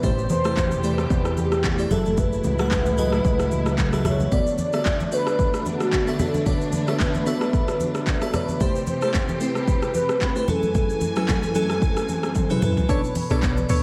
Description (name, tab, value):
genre	amapiano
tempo	112 BPM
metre	4/4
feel	swing 55% on 16ths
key	unclear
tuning	A4 = 441 Hz
part	warm velvety synth lead	melody	0.0-13.8 s	F#4 to D5	-29 LUFS	equal	chorus, diffuse ambient delay
part	crystalline FM electric piano	accompaniment	0.0-13.8 s	B2 to G#5	-30 LUFS	equal	chorus
part	dark studio string section	sustained chords	0.0-12.9 s	F#2 to G#5	-32 LUFS	equal	none
part	fat analog bass	bass	0.0-4.3 s	F#1 to E2	-27 LUFS	equal	none
part	deep house drum kit	drums	0.0-13.8 s	handclaps, hi-hat, kick drum, rim click, shaker, toms	-27 LUFS	equal	overdrive, vintage 12-bit sampler grit
part	congas	percussion	0.0-13.8 s	none	-32 LUFS	equal	none
part	swell	sound effects	11.9-12.9 s	none	-42 LUFS	equal	none
part	percussive organ stab	stabs	12.9-13.8 s	D4 to C#5	-33 LUFS	equal	chorus, phaser, diffuse ambient delay
part	deep log drum bass	bass	13.3-13.8 s	B1 to D2	-25 LUFS	equal	none
room	moderate plate reverb, RT60 2.5 s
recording	dreamy mix soaked in reverb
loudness	-22 LUFS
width	mono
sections	0.0-12.9 A section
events	drum fill 12.4-12.9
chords	0.0 Am9; 1.9 F#m9; 4.3 Bm9; 8.6 Am9; 10.5 F#m9; 12.9 Bm9